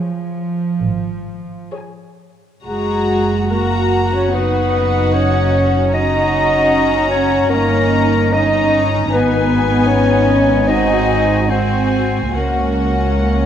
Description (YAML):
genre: classical, slow romantic movement for symphony orchestra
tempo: 74 BPM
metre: 4/4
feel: uneven beats, rubato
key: F# major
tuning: A4 = 439 Hz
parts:
  - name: rich studio violin section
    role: melody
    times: 0.0-13.5 s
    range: F#5 to A#5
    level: -24 LUFS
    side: left 4 dB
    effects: none
  - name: warm studio violin section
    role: second line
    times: 0.0-13.5 s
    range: C#4 to C#5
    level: -23 LUFS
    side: left 4 dB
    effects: none
  - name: warm studio viola section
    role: accompaniment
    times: 0.0-13.5 s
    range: B3 to G#4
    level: -21 LUFS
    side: equal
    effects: none
  - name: warm studio cello section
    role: bass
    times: 0.0-13.5 s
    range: E#3 to D#4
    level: -20 LUFS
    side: right 2 dB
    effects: none
  - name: dark studio double bass section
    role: bass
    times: 0.8-13.5 s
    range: F#1 to C#2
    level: -19 LUFS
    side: right 2 dB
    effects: none
  - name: warm clarinet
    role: second line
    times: 2.6-13.5 s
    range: G#4 to D#5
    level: -19 LUFS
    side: left 2 dB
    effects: none
room: moderate concert hall reverb, RT60 2.1 s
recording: dark, warm production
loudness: -13 LUFS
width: side -9 dB against mid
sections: 0.0-2.7 A section; 2.7-13.5 A section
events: none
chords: 0.0 C#; 2.7 F#; 4.3 B/F#; 5.9 F#; 7.5 D#7/G; 9.1 G#m; 10.7 G#7; 12.3 F#/C#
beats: 0.82 1.74 | 2.65 3.51 4.33 5.12 | 5.92 6.72 7.51 8.34 | 9.12 9.89 10.68 11.49 | 12.34 13.24